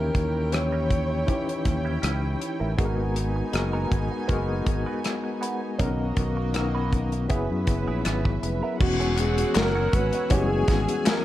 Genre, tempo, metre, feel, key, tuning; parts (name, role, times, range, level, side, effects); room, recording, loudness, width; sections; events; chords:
lush 1970s-style soul; 80 BPM; 4/4; swing 54% on 16ths; A4 = 440 Hz
dark alto saxophone; melody; 0.0-2.0, 8.8-11.2 s; F#4 to C#5; -28 LUFS; equal
warm studio string section; second line; 0.0-11.2 s; A#3 to G#5; -34 LUFS; right 4 dB; slapback echo
barky tine electric piano; accompaniment; 0.0-11.2 s; C#3 to A#4; -29 LUFS; left 4 dB; overdrive, fast tremolo
direct-recorded clean electric guitar; riff; 0.0-11.1 s; G#3 to B4; -36 LUFS; right 5 dB; wah
fingered electric bass; bass; 0.0-10.9 s; E1 to F#2; -27 LUFS; equal
modern studio drum kit; drums; 0.1-11.2 s; crash cymbal, hi-hat, kick drum, rim click, snare drum; -26 LUFS; equal
warm analog pad; sustained chords; 8.8-11.2 s; C#5 to E6; -37 LUFS; left 2 dB; chorus
group handclap; percussion; 9.2-11.2 s; -35 LUFS; left 7 dB
light reverb, small room reverb; dark, warm production; -22 LUFS; side -14 dB against mid
0.0-8.8 A section; 8.8-11.2 B section
0.0 D#7b9; 2.8 G#m9; 5.8 Bmaj9; 7.3 F#9sus4; 8.8 E69